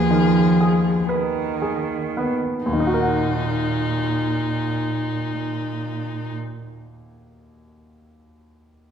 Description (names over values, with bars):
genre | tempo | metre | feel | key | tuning
classical, slow romantic movement for piano quintet | 42 BPM | 4/4 | rubato | Eb minor | A4 = 438 Hz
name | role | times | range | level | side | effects
clear violin | melody | 0.0-6.3 s | Eb4 to Ab4 | -26 LUFS | left 5 dB | none
rich cello | second line | 0.0-6.4 s | Bb2 to F3 | -22 LUFS | right 3 dB | none
bright grand piano | accompaniment | 0.0-8.9 s | Eb2 to Gb5 | -24 LUFS | left 1 dB | none
room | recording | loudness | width
wet recital hall reverb, RT60 1.5 s | dark, warm production | -19 LUFS | side -8 dB against mid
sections
0.0-2.7 A section; 2.7-8.4 B section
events
slowing down 0.0-2.7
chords
0.0 Abm/Eb; 2.7 Ebm